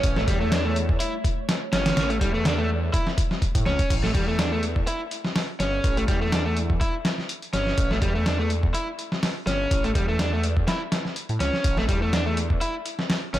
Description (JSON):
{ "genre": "breakbeat, breaks", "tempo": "124 BPM", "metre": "4/4", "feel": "swing 54% on 16ths", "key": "A mixolydian", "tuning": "A4 = 442 Hz", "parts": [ { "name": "warbly tape-like pad", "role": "sustained chords", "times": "0.0-3.9 s", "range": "G3 to C#5", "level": "-34 LUFS", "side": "right 1 dB", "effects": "chorus, built-in reverb, sidechain pumping" }, { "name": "overdriven electric guitar", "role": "riff", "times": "0.0-13.4 s", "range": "G3 to E4", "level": "-27 LUFS", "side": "equal", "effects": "tube saturation, spring reverb, ping-pong delay" }, { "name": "phased detuned saw bass", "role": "bass", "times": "0.0-13.4 s", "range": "G1 to A2", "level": "-26 LUFS", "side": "equal", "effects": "phaser" }, { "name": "dusty soul sampler-style drum kit", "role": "drums", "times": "0.0-13.4 s", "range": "crash cymbal, hi-hat, kick drum, snare drum", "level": "-24 LUFS", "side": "equal", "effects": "overdrive" } ], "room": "little or no reverb", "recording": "none", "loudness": "-22 LUFS", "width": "side -14 dB against mid", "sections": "0.0-3.9 A section; 3.9-13.4 B section", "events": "drop 0.0-3.9", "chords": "0.0 A7", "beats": "| 0.04 0.52 1.00 1.49 | 1.97 2.46 2.94 3.42 | 3.91 4.39 4.87 5.36 | 5.84 6.33 6.81 7.29 | 7.78 8.26 8.74 9.23 | 9.71 10.20 10.68 11.16 | 11.65 12.13 12.62 13.10" }